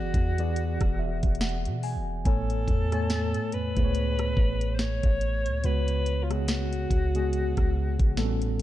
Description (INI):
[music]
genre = contemporary R&B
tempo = 71 BPM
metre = 4/4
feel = swing 58% on 16ths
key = unclear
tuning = A4 = 441 Hz
[part]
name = warm alto saxophone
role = melody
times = 0.0-8.6 s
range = E#4 to C#5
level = -33 LUFS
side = left 2 dB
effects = none
[part]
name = mellow tine electric piano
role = accompaniment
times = 0.0-8.6 s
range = A2 to G#5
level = -31 LUFS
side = equal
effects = medium stereo tremolo
[part]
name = soft 808-style bass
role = bass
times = 0.0-8.6 s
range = E1 to B2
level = -28 LUFS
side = equal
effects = none
[part]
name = smooth R&B drum kit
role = drums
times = 0.1-8.6 s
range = hi-hat, kick drum, rim click, snare drum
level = -27 LUFS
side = equal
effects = vintage 12-bit sampler grit
[sound]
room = little or no reverb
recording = dark, warm production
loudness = -24 LUFS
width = side -14 dB against mid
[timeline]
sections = 0.0-8.6 A section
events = tine electric piano fill 0.6-2.3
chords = 0.0 E7; 2.3 Amaj7; 5.6 C#7sus4